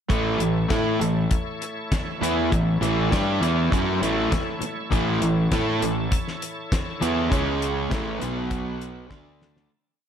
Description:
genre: classic rock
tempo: 100 BPM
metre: 4/4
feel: straight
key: A major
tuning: A4 = 442 Hz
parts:
  - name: bright tonewheel organ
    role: sustained chords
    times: 0.1-9.7 s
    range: G#3 to A5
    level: -34 LUFS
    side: left 1 dB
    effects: slow rotary speaker, overdrive, chorus vibrato
  - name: crunchy overdriven guitar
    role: riff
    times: 0.1-9.7 s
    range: A2 to A4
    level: -27 LUFS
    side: left 8 dB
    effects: slapback echo
  - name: crunchy overdriven guitar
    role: riff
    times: 0.1-9.7 s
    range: A2 to A4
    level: -26 LUFS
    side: right 7 dB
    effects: slapback echo
  - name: fuzz fingered electric bass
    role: bass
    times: 0.1-9.7 s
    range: A1 to A2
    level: -29 LUFS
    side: equal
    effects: overdrive
  - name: damped 70s drum kit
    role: drums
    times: 0.1-9.7 s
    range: hi-hat, kick drum, snare drum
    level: -26 LUFS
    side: left 1 dB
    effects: none
room: moderate lush hall reverb, RT60 1.7 s, small room ambience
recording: big arena sound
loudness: -21 LUFS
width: side -8 dB against mid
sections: 0.1-9.7 riff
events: fade-out 7.3-9.7; drum fill 9.1-9.7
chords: 0.1 A; 7.3 C#5; 7.9 A5; 8.2 B5; 9.1 D5

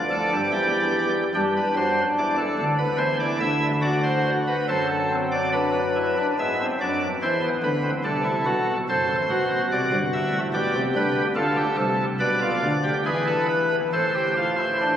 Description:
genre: classical, baroque-style 3-part fugue for pipe organ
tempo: 72 BPM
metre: 3/4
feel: straight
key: A minor from 11.4 s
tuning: A4 = 441 Hz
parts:
  - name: pipe organ, cornet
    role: solo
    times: 0.0-15.0 s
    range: F#1 to E5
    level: -20 LUFS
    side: equal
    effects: none
room: wet cathedral reverb, RT60 4.7 s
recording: recorded on a phone in the room, club reverb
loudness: -20 LUFS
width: side -9 dB against mid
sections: 0.0-6.4 A section; 6.4-15.0 B section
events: none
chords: 0.0 G5; 0.5 Em7; 1.3 G; 3.0 C/E; 3.8 D7; 5.5 Bmadd11/F#; 6.4 E7; 8.1 Am/C; 8.9 D7/F#; 10.6 G/B; 11.4 Bm7b5; 13.1 E; 13.9 Am

